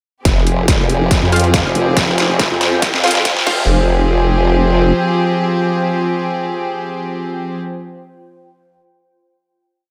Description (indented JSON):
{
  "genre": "heavy wobble dubstep",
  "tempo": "140 BPM",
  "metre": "4/4",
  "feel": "swing 53% on 16ths, half-time",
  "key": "F minor",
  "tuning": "A4 = 440 Hz",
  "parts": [
    { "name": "rich chamber string section", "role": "sustained chords", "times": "0.3-7.6 s", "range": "F3 to Ab4", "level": "-22 LUFS", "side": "equal", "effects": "sidechain pumping" },
    { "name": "formant-sweep wobble bass", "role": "bass", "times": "0.3-4.9 s", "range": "F1 to F2", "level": "-18 LUFS", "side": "equal", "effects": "chorus, overdrive" },
    { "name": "dubstep drum kit", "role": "drums", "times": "0.3-3.6 s", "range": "crash cymbal, hi-hat, snare drum", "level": "-20 LUFS", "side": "equal", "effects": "high-pass filter on snare, high-pass filter on hats, high-pass filter on cymbals, high-pass filter on room" },
    { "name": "electronic kick drum", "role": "drums", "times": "0.3-3.6 s", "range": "none", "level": "-19 LUFS", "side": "equal", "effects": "none" },
    { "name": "riser", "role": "sound effects", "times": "1.9-3.7 s", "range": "none", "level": "-28 LUFS", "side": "equal", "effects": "none" },
    { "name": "warbly tape-like pad", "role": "texture", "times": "0.8-7.9 s", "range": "F4 to G5", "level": "-24 LUFS", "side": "equal", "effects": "chorus, built-in reverb, sidechain pumping" },
    { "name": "orchestra-hit-like synth stab", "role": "stabs", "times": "1.3-7.6 s", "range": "F4 to F5", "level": "-23 LUFS", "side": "equal", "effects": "built-in reverb, digital delay" }
  ],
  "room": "light reverb, digital ambience",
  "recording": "high-pass filter",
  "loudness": "-15 LUFS",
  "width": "mono",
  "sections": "0.3-3.7 build; 3.7-7.1 final note",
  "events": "build-up 0.3-3.7; drum fill 0.3-3.7; filter sweep 0.3-3.7",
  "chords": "0.3 Fmadd9"
}